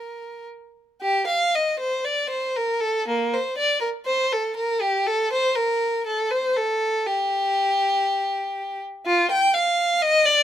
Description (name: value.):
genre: classical, baroque-style suite movement for unaccompanied violin.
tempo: 52-64 BPM.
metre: 4/4.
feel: rubato.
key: G minor.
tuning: A4 = 440 Hz.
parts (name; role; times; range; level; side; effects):
rich violin; solo; 0.0-10.4 s; Bb3 to G5; -20 LUFS; equal; none.
room: little or no reverb.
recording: close, detailed microphones.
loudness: -20 LUFS.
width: side -11 dB against mid.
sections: 0.0-1.0 A section; 1.0-10.4 A section.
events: none.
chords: none.